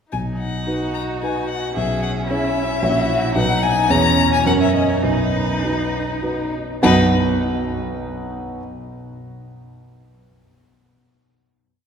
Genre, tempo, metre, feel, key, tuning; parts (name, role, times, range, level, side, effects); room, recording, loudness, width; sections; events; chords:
quick classical-period movement for piano quartet; 98-113 BPM; 3/4; rubato; B major; A4 = 441 Hz
rich violin; melody; 0.1-7.2 s; B4 to A#5; -22 LUFS; left 5 dB
rich violin; second line; 0.1-7.2 s; C#4 to F#4; -28 LUFS; left 2 dB
dark concert grand piano; accompaniment; 0.1-8.6 s; A#1 to F#5; -20 LUFS; right 1 dB
rich cello; second line; 0.7-7.2 s; F#2 to G#4; -25 LUFS; right 4 dB
wet church reverb, RT60 3.8 s; recorded in a church or concert hall; -17 LUFS; side -7 dB against mid
0.1-6.8 A section; 6.8-8.6 final chord
slowing down 2.6-6.8
0.1 B; 1.8 C#m7/B; 2.8 F#7/A#; 3.4 B; 3.9 C#m/E; 4.5 F#; 5.0 B